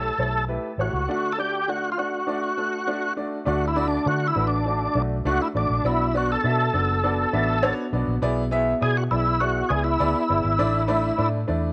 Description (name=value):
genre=uptempo 1960s-style soul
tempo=101 BPM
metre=4/4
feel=straight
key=D major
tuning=A4 = 440 Hz
part: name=overdriven tonewheel organ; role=melody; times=0.0-11.3 s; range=D4 to A4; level=-27 LUFS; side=equal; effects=chorus vibrato, slow rotary speaker
part: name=warm upright piano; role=accompaniment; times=0.0-11.7 s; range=A2 to E5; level=-29 LUFS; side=equal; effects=none
part: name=vintage muted fingered electric bass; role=bass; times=0.0-11.7 s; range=F#1 to D3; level=-28 LUFS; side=equal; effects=none
room=light reverb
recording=none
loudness=-23 LUFS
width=mono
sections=0.0-3.5 A section; 3.5-11.7 B section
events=tonewheel organ solo 3.5-11.7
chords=0.0 A7; 1.1 D; 5.8 Bm; 8.2 E7/B; 10.6 Asus4